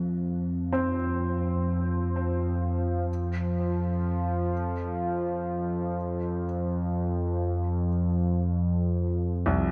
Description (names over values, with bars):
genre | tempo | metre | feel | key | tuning
dark ambient drone | free time | none | none | unclear | A4 = 440 Hz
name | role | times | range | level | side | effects
dark baby grand piano | arpeggios | 0.0-9.7 s | C2 to C4 | -34 LUFS | equal | delay
analog drone | drone | 0.0-9.7 s | F2 to F3 | -29 LUFS | equal | chorus
bronze singing bowl | texture | 0.0-3.1 s | C4 | -45 LUFS | equal | none
room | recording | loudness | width
moderate huge ambient reverb, RT60 8.3 s | faint mains hum | -28 LUFS | mono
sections
0.0-3.1 A section; 3.1-9.7 B section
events
filter sweep on synth drone 0.0-3.1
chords
0.0 F5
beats
free time